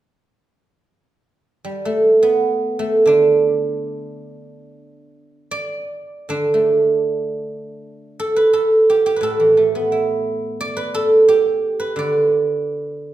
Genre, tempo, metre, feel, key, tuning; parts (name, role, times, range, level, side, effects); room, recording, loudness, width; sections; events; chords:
chinese traditional, Chinese solo plucked strings; free time; D zhi mode; A4 = 440 Hz
guzheng; solo; 1.6-13.1 s; A2 to D5; -15 LUFS; right 2 dB
wet recital hall reverb, RT60 1.4 s; recorded in a church or concert hall; -15 LUFS; side -13 dB against mid
0.9-7.8 A section; 7.8-13.1 B section